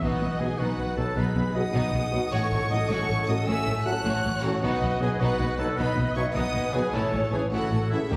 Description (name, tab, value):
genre	cinematic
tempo	104 BPM (dotted quarters)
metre	12/8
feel	straight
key	B mixolydian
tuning	A4 = 440 Hz
part	warm symphonic violin section	melody	0.0-8.2 s	E5 to F#6	-37 LUFS	equal	none
part	clear clarinet	second line	0.0-8.2 s	E4 to F#5	-37 LUFS	equal	none
part	mellow hollow concert flute	second line	0.0-8.2 s	G#4 to A5	-37 LUFS	equal	none
part	rich symphonic violin section	second line	0.0-8.2 s	A3 to F#4	-39 LUFS	equal	none
part	warm oboe	second line	0.0-8.2 s	E4 to F#5	-38 LUFS	equal	none
part	dark studio viola section	accompaniment	0.0-8.2 s	F#4 to D#5	-36 LUFS	equal	none
part	concert harp	arpeggios	0.0-8.2 s	A2 to C#5	-38 LUFS	equal	none
part	rich symphonic cello section	bass	0.0-8.2 s	D#2 to B2	-34 LUFS	equal	none
part	rich symphonic double bass section	bass	0.0-8.2 s	A1 to D#2	-32 LUFS	equal	none
part	mellow French horn section	sustained chords	0.4-8.0 s	A3 to F#4	-39 LUFS	equal	none
part	mellow trombone section	sustained chords	0.4-8.0 s	A2 to F#3	-41 LUFS	equal	none
room	wet scoring stage reverb, RT60 1.5 s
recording	heard from further back in the room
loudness	-26 LUFS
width	mono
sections	0.0-8.2 A section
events	none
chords	0.0 B; 2.3 F#m/A; 4.6 B; 6.9 A